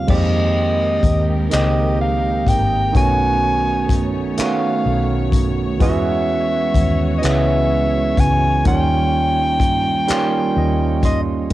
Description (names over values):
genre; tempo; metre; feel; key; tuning
slow six-eight R&B; 42 BPM (dotted quarters); 6/8; straight; unclear; A4 = 440 Hz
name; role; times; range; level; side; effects
warm soprano saxophone; melody; 0.0-11.2 s; Eb5 to G#5; -20 LUFS; left 1 dB; none
barky tine electric piano; accompaniment; 0.0-11.5 s; Eb2 to C6; -20 LUFS; right 5 dB; none
warm studio string section; sustained chords; 0.1-11.5 s; G3 to C#5; -31 LUFS; left 2 dB; none
vintage muted fingered electric bass; bass; 0.1-11.5 s; Ab1 to F2; -20 LUFS; left 1 dB; none
warm soul drum kit; drums; 0.1-11.5 s; crash cymbal, handclaps, hi-hat, kick drum; -20 LUFS; left 1 dB; cassette tape
room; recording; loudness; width
light reverb, small room ambience; home recording on cassette; -15 LUFS; side -15 dB against mid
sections
0.1-11.5 A section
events
tine electric piano fill 10.1-11.5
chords
0.1 Fm11; 2.9 B9; 5.8 E69; 8.7 Eb7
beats
| 0.09 1.52 | 2.94 4.37 | 5.80 7.23 | 8.66 10.09 | 11.52